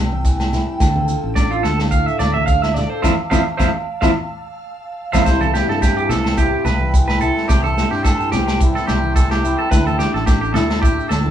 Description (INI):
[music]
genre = highlife guitar band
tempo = 108 BPM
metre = 4/4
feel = swing 55% on 16ths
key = C major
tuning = A4 = 440 Hz
[part]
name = nylon-string guitar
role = accompaniment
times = 0.0-11.3 s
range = G2 to A4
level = -23 LUFS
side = left 4 dB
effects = none
[part]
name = ethereal airy pad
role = sustained chords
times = 0.0-11.3 s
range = E5 to E6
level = -28 LUFS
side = right 2 dB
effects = ensemble chorus, built-in reverb, phaser
[part]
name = fingered electric bass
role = bass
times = 0.0-11.3 s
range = A1 to G2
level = -21 LUFS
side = equal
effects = none
[part]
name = congas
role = percussion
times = 0.1-11.3 s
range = none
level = -28 LUFS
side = equal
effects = none
[part]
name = vintage drum kit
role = drums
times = 0.2-11.2 s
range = kick drum, snare drum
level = -19 LUFS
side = equal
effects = none
[part]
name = maracas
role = percussion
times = 0.3-11.3 s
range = none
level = -36 LUFS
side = right 4 dB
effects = none
[part]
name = agogo bells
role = percussion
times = 0.4-11.3 s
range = none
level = -30 LUFS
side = left 2 dB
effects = none
[part]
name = electric guitar at the edge of break-up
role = arpeggios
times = 1.4-11.3 s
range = F4 to F5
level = -20 LUFS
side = right 4 dB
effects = none
[sound]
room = moderate small room ambience, RT60 0.5 s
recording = band playing live in one room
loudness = -15 LUFS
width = side -10 dB against mid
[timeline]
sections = 0.0-5.3 A section; 5.3-11.3 B section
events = clean electric guitar solo 0.0-5.3; band accent 3.0-5.3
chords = 0.0 C; 0.8 Dmadd9; 3.0 Fmaj7; 5.3 C; 9.7 Dsus2